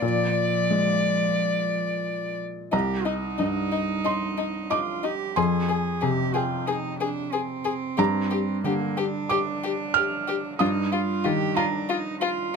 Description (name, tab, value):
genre	neoclassical piano and strings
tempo	92 BPM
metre	4/4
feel	rubato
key	C minor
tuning	A4 = 441 Hz
part	dark violin	melody	0.0-12.3 s	Eb4 to D5	-27 LUFS	left 6 dB	none
part	warm cello	second line	0.0-12.6 s	F3 to Ab4	-30 LUFS	right 7 dB	none
part	felt-muted upright piano	accompaniment	0.0-12.6 s	C2 to F6	-26 LUFS	right 1 dB	none
room	light reverb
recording	close, detailed microphones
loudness	-23 LUFS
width	side -5 dB against mid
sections	0.0-2.7 A section; 2.7-12.6 A section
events	none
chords	0.0 Bb7; 2.7 Cmadd9; 5.4 Fmadd9; 8.0 Gm; 10.6 Ebadd9/G